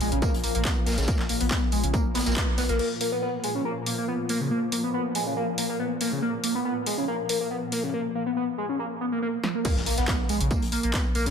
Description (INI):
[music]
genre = driving peak-time techno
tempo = 140 BPM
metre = 4/4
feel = straight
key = Bb phrygian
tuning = A4 = 439 Hz
[part]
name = overdriven synth lead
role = riff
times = 0.0-11.3 s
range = Db3 to Cb4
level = -27 LUFS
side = equal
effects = phaser, vintage 12-bit sampler grit, sidechain pumping, dub echo
[part]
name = saturated sub bass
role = bass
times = 0.0-2.8, 9.8-11.3 s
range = Bb1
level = -28 LUFS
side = equal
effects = overdrive, sidechain pumping, low-pass filter
[part]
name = swarming drone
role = drone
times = 0.0-11.3 s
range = Bb2 to F3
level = -34 LUFS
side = left 1 dB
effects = built-in reverb, sidechain pumping
[part]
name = raw garage drum kit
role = drums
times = 0.0-2.8, 9.6-11.3 s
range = hi-hat, snare drum, tambourine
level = -37 LUFS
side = equal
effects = high-pass filter on hats, small room ambience, high-pass filter on snare, high-pass filter on perc, high-pass filter on room
[part]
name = techno drum kit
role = drums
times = 0.0-11.3 s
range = crash cymbal, handclaps, hi-hat, snare drum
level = -31 LUFS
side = equal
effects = overdrive, sidechain pumping on hats, small room ambience, sidechain pumping on cymbals
[part]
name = electronic kick drum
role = drums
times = 0.2-2.5, 9.7-11.0 s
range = none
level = -26 LUFS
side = equal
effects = overdrive, small room ambience
[part]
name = impact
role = sound effects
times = 9.7-11.3 s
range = none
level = -35 LUFS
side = equal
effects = none
[sound]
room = moderate stone room reverb, RT60 1.0 s, studio ambience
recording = none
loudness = -24 LUFS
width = side -7 dB against mid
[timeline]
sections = 0.0-2.8 A section; 2.8-9.7 B section; 9.7-11.3 C section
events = band accent 2.4; drum fill 9.4; drop 9.7-11.3; impact 9.7-11.3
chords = 0.0 Bb5